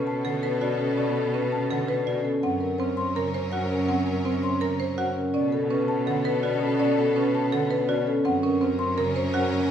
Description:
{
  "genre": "classical, minimalist pattern music",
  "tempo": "165 BPM",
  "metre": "4/4",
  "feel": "straight",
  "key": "unclear",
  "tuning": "A4 = 441 Hz",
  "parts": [
    { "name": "marimba with soft mallets", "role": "melody", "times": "0.0-9.7 s", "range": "A4 to C6", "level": "-27 LUFS", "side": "left 5 dB", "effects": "none" },
    { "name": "concert harp", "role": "accompaniment", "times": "0.0-9.7 s", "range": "Db3 to Db4", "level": "-28 LUFS", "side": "right 1 dB", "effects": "none" },
    { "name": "rich symphonic string section", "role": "sustained chords", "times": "0.0-9.7 s", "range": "Cb4 to Bb4", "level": "-34 LUFS", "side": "left 2 dB", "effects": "none" },
    { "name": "buzzing marimba with medium hard mallets", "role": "arpeggios", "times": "0.0-9.6 s", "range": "C4 to C5", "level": "-30 LUFS", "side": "right 6 dB", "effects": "none" },
    { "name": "rich cello", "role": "bass", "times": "0.0-9.7 s", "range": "Gb2 to Cb3", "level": "-31 LUFS", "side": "right 2 dB", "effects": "none" }
  ],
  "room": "wet recital hall reverb, RT60 1.3 s",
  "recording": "recorded in a church or concert hall",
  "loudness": "-22 LUFS",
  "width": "side -8 dB against mid",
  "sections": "0.0-9.7 A section",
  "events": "none",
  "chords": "0.0 Cbm7; 2.4 Gb; 5.3 Cbm7; 8.3 Gb"
}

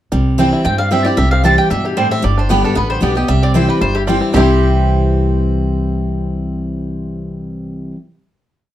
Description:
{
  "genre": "bluegrass",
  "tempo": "228 BPM",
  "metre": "4/4",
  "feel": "swing 54% on 8ths",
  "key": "C major",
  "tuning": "A4 = 439 Hz",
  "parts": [
    { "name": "picked steel-string acoustic guitar", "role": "accompaniment", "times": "0.1-8.0 s", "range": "G2 to G4", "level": "-18 LUFS", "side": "left 2 dB", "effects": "none" },
    { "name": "bluegrass banjo", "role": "arpeggios", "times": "0.1-7.9 s", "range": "G3 to G4", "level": "-22 LUFS", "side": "right 3 dB", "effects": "none" },
    { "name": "upright bass", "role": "bass", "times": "0.1-7.9 s", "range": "G1 to G2", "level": "-17 LUFS", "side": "equal", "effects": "none" },
    { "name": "mandolin", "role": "stabs", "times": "0.4-8.0 s", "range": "B3 to G5", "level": "-22 LUFS", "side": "right 5 dB", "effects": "none" },
    { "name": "mandolin", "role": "melody", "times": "0.6-7.9 s", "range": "G4 to A5", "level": "-20 LUFS", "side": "left 1 dB", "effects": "plate reverb" }
  ],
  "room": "moderate small room ambience, RT60 0.5 s",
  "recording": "dark, warm production",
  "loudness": "-12 LUFS",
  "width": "side -12 dB against mid",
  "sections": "0.1-4.3 A section; 4.3-6.5 final chord",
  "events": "none",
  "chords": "0.1 C; 2.2 G; 3.3 C"
}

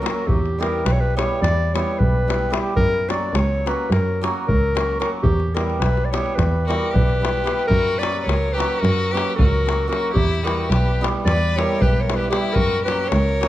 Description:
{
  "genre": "balkan folk, Balkan wedding band",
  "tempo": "220 BPM (eighths)",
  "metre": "9/8",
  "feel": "straight",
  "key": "unclear",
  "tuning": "A4 = 440 Hz",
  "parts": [
    { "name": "warm clarinet", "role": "melody", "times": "0.0-13.5 s", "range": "G4 to D5", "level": "-23 LUFS", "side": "left 1 dB", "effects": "none" },
    { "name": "hammered dulcimer", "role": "accompaniment", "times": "0.0-13.5 s", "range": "F#3 to G4", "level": "-26 LUFS", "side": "right 2 dB", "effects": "none" },
    { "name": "davul", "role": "percussion", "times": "0.1-13.5 s", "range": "none", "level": "-25 LUFS", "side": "left 2 dB", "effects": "none" },
    { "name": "warm double bass", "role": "bass", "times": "0.3-13.5 s", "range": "B1 to F#2", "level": "-21 LUFS", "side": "right 1 dB", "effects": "none" },
    { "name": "clear violin", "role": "second line", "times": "6.7-13.5 s", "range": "E4 to B4", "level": "-27 LUFS", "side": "left 3 dB", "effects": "none" }
  ],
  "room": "light reverb",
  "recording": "close, detailed microphones",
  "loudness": "-17 LUFS",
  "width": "side -14 dB against mid",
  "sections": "0.0-13.5 A section",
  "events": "speeding up 0.0-13.5",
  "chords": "0.3 Em; 2.8 F#; 5.2 Em; 7.7 F#; 10.1 Em; 12.6 F#"
}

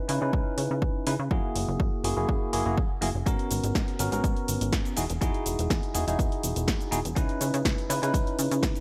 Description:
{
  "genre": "filtered disco house",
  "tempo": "123 BPM",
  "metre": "4/4",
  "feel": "straight",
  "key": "F# mixolydian",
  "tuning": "A4 = 441 Hz",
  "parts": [
    { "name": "bell-like tine electric piano", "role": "accompaniment", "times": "0.0-8.8 s", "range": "A#3 to B4", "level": "-32 LUFS", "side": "equal", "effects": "phaser, sidechain pumping, low-pass filter" },
    { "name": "plucky analog bass", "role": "bass", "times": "0.1-8.7 s", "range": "E1 to C#3", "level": "-32 LUFS", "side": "equal", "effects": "tube saturation, sidechain pumping, low-pass filter" },
    { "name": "punchy analog drum machine", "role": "drums", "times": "0.1-8.8 s", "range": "cabasa, hi-hat, snare drum", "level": "-35 LUFS", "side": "equal", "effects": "none" },
    { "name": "electronic kick drum", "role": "drums", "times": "0.3-8.7 s", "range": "none", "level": "-30 LUFS", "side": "equal", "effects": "none" }
  ],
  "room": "moderate plate reverb, RT60 2.3 s",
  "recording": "bright 1980s-style digital production",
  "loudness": "-27 LUFS",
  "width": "mono",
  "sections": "0.0-8.8 A section",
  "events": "none",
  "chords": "0.0 C#m9; 1.3 F#9; 3.3 G#m11; 5.0 Emaj9; 7.2 C#m9"
}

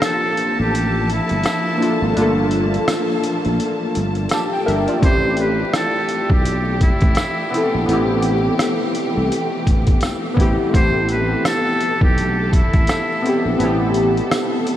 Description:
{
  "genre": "lo-fi hip hop",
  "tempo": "84 BPM",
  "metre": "4/4",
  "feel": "swing 60% on 16ths",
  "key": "A phrygian",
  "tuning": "A4 = 440 Hz",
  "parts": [
    { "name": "trumpet with metal mute", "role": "melody", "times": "0.0-13.6 s", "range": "E4 to C5", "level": "-24 LUFS", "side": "right 1 dB", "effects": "ping-pong delay" },
    { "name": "warbly lo-fi synth keys", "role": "accompaniment", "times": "0.0-14.8 s", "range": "A3 to A5", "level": "-20 LUFS", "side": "left 1 dB", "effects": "chorus, cassette tape" },
    { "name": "rich studio string section", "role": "sustained chords", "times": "0.0-14.8 s", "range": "E3 to A5", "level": "-26 LUFS", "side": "equal", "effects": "none" },
    { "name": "trip hop sampler-style drum kit", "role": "drums", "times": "0.0-14.8 s", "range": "hi-hat, kick drum, rim click", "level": "-21 LUFS", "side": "equal", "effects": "none" },
    { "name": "tambourine", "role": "percussion", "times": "0.0-14.5 s", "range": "none", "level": "-40 LUFS", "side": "right 5 dB", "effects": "none" },
    { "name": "sustaining fretless electric bass", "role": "bass", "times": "0.6-14.2 s", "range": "G1 to C2", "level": "-21 LUFS", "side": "equal", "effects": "wide subtle chorus" }
  ],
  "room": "moderate huge ambient reverb, RT60 5.9 s",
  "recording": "dreamy mix soaked in reverb, vinyl crackle",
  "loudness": "-15 LUFS",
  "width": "side -12 dB against mid",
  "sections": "0.0-14.8 A section",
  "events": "break 0.0-5.0",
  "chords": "0.0 Gm9; 5.0 Am9"
}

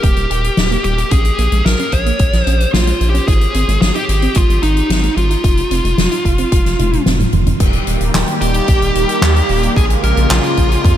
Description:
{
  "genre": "synthwave",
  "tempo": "111 BPM",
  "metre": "4/4",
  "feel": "straight",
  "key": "unclear",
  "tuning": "A4 = 439 Hz",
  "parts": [
    { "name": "dark smooth lead guitar", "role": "melody", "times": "0.0-11.0 s", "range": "Eb4 to Db5", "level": "-18 LUFS", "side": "equal", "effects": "overdrive, tape echo" },
    { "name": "soft round pluck", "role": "arpeggios", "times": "0.0-7.6 s", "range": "F3 to G4", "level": "-24 LUFS", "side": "right 3 dB", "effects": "chorus, analog delay" },
    { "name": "round analog bass", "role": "bass", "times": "0.0-10.9 s", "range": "Eb1 to F2", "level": "-16 LUFS", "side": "equal", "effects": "none" },
    { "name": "electronic kick drum", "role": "drums", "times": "0.0-11.0 s", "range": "none", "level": "-14 LUFS", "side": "equal", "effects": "none" },
    { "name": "soft-mallet drum kit", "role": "drums", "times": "0.0-11.0 s", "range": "crash cymbal, handclaps, hi-hat, snare drum, toms", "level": "-20 LUFS", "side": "left 1 dB", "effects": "none" },
    { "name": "soft supersaw", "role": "sustained chords", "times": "7.6-11.0 s", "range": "Db3 to G4", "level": "-18 LUFS", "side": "right 1 dB", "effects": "analog chorus, sidechain pumping" },
    { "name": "string machine, violins", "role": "second line", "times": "8.4-11.0 s", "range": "F4 to Bb4", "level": "-23 LUFS", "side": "right 1 dB", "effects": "ensemble chorus, analog delay" }
  ],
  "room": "light reverb, small room ambience",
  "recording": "none",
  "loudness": "-12 LUFS",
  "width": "side -11 dB against mid",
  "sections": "0.0-7.6 A section; 7.6-11.0 B section",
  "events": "drum fill 6.8-7.6",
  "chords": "0.0 Eb; 1.1 Bbm7; 3.3 Abmaj7; 5.4 Fm7; 7.6 Eb; 9.8 Bbm7"
}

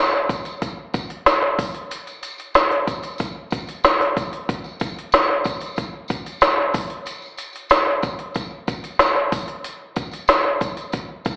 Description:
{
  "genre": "pop",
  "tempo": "93 BPM",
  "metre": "4/4",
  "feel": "straight",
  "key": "none",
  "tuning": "none",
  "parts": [
    { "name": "organic electronic drum kit", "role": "drums", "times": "0.3-11.4 s", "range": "hi-hat, kick drum, snare drum", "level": "-18 LUFS", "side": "equal", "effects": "none" },
    { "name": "tambourine", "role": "percussion", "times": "0.3-11.4 s", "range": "none", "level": "-35 LUFS", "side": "equal", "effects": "none" }
  ],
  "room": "moderate plate reverb, RT60 3.3 s",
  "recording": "live gig heard through the venue's PA, club reverb, AM radio sound",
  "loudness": "-19 LUFS",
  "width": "side -30 dB against mid",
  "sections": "0.0-11.4 A section",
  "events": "none",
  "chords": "none"
}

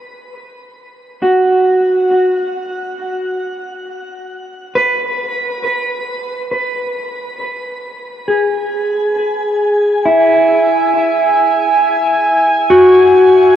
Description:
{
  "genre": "ambient",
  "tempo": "68 BPM",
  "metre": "3/4",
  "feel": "straight",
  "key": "E major",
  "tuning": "A4 = 440 Hz",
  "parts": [
    { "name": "mellow electric guitar", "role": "arpeggios", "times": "0.0-13.6 s", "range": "E4 to B4", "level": "-12 LUFS", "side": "equal", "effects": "diffuse ambient delay" },
    { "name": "drifting glass-harmonics texture", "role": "texture", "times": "9.6-13.6 s", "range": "G#5", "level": "-14 LUFS", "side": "right 3 dB", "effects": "chorus, built-in reverb" }
  ],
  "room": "wet shimmer reverb, RT60 8.0 s",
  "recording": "worn, warbling old tape, cassette tape, warbly pitch drift",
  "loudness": "-11 LUFS",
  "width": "side -10 dB against mid",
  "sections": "0.0-9.2 A section; 9.2-13.6 B section",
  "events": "none",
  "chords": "0.0 F#sus4; 3.9 G#m; 9.2 E"
}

